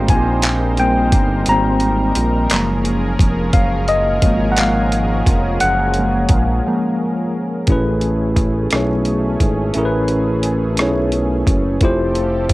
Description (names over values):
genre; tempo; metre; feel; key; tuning
slow six-eight R&B; 58 BPM (dotted quarters); 6/8; straight; unclear; A4 = 442 Hz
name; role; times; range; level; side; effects
tine electric piano; accompaniment; 0.0-12.5 s; E#3 to A#5; -18 LUFS; left 1 dB; fast stereo tremolo, cassette tape, plate reverb
lush unison pad; sustained chords; 0.0-12.5 s; E#3 to B#4; -25 LUFS; right 1 dB; chorus, cassette tape, plate reverb
smooth synth bass; bass; 0.0-12.5 s; E#1 to B1; -19 LUFS; equal; none
boom bap sampler-style drum kit; drums; 0.1-12.5 s; handclaps, hi-hat, kick drum, rim click; -16 LUFS; equal; overdrive, cassette tape
room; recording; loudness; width
light reverb; home recording on cassette; -14 LUFS; side -19 dB against mid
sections
0.0-7.7 A section; 7.7-12.5 B section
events
tine electric piano solo 0.0-7.7; break 6.6-7.7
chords
0.0 G#maj9; 2.5 F#maj9; 7.7 Amaj9; 11.8 Fmaj9